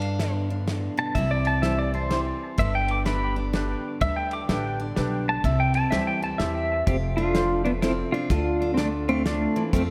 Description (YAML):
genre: honky-tonk and classic country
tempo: 126 BPM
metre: 3/4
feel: swing 62% on 8ths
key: C major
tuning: A4 = 440 Hz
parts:
  - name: pedal steel guitar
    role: melody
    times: 0.0-9.8 s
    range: A3 to D6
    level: -28 LUFS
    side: equal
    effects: subtle chorus, delay
  - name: picked steel-string acoustic guitar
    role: accompaniment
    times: 0.0-9.9 s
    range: F2 to G4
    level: -33 LUFS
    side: equal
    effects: none
  - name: upright bass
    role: bass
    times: 0.0-9.9 s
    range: F1 to G2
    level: -30 LUFS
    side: equal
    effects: none
  - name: cloth-damped thuddy drum kit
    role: drums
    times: 0.0-9.9 s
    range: hi-hat, kick drum, ride cymbal, snare drum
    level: -32 LUFS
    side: equal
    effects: none
  - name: clear upright piano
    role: accompaniment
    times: 1.6-9.6 s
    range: D4 to D5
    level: -36 LUFS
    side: equal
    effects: lush chorus
room: moderate lush hall reverb, RT60 2.1 s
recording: dreamy mix soaked in reverb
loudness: -25 LUFS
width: mono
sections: 0.0-6.9 A section; 6.9-9.9 B section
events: pedal steel guitar solo 0.0-6.9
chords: 0.0 G; 1.2 C; 2.6 G; 5.4 C; 6.9 F; 8.3 Dm